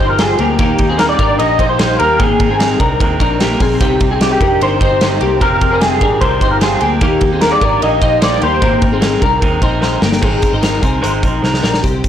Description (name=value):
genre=jangly indie pop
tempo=150 BPM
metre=4/4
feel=straight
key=unclear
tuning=A4 = 440 Hz
part: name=electric guitar through a small old amp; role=melody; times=0.0-8.8 s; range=G4 to Eb5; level=-14 LUFS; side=equal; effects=ensemble chorus, slapback echo
part: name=electric guitar through a small old amp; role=accompaniment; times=0.0-11.8 s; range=F2 to Bb4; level=-19 LUFS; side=right 4 dB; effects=spring reverb
part: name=twelve-string electric guitar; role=arpeggios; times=0.0-12.1 s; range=Bb3 to G5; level=-18 LUFS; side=left 5 dB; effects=ensemble chorus
part: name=vintage muted picked electric bass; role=bass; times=0.0-12.1 s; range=F1 to Eb2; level=-20 LUFS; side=right 1 dB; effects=none
part: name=big rock drum kit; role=drums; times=0.2-12.1 s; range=crash cymbal, hi-hat, kick drum, ride cymbal, snare drum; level=-16 LUFS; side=equal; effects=none
room=light reverb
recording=blown-out, overdriven recording, overdrive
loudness=-11 LUFS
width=side -10 dB against mid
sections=0.0-10.2 A section; 10.2-11.8 B section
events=drum fill 9.8-10.2, 11.4-11.8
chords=0.0 Fmadd9; 0.6 Abadd9; 3.8 Fmadd9; 7.0 Eb; 8.6 Abadd9